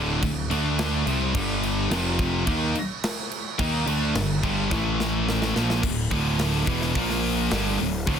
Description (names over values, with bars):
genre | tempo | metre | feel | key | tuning
heavy metal | 107 BPM | 4/4 | straight | D minor | A4 = 442 Hz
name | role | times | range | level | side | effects
distorted electric guitar | riff | 0.0-8.2 s | D2 to Eb4 | -28 LUFS | right 9 dB | overdrive
high-gain distorted guitar | riff | 0.0-8.2 s | D2 to Eb4 | -28 LUFS | left 10 dB | distortion
thick fuzz guitar | riff | 0.0-8.2 s | D2 to Eb4 | -29 LUFS | equal | distortion
fuzz picked electric bass | bass | 0.0-8.2 s | D1 to Eb2 | -28 LUFS | equal | overdrive
tight metal drum kit | drums | 0.2-8.2 s | crash cymbal, hi-hat, kick drum, snare drum | -29 LUFS | equal | none
room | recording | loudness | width
light reverb | dense, heavily limited modern master | -22 LUFS | side -8 dB against mid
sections
0.0-5.8 A section; 5.8-8.2 B section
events
drum fill 4.7-5.8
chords
0.0 D5; 1.4 G5; 1.9 F5; 2.5 G5; 4.7 A5; 5.6 Bb5; 5.8 D5; 7.0 Bb5; 7.5 D5